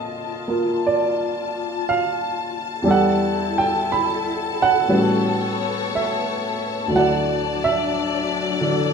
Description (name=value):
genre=jazz ballad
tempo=59 BPM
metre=4/4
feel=swing 68% on 8ths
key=unclear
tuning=A4 = 441 Hz
part: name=warm baby grand piano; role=accompaniment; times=0.0-8.9 s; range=D2 to B5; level=-20 LUFS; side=right 2 dB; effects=none
part: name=warm symphonic string section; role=sustained chords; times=0.0-8.9 s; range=F#3 to A5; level=-24 LUFS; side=left 6 dB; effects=none
room=wet large studio reverb, RT60 1.3 s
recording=minimal, uncompressed stereo recording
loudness=-19 LUFS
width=side -6 dB against mid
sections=0.0-8.9 A section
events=none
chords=0.0 Bbmaj7; 2.8 Em7; 4.9 A13; 6.9 D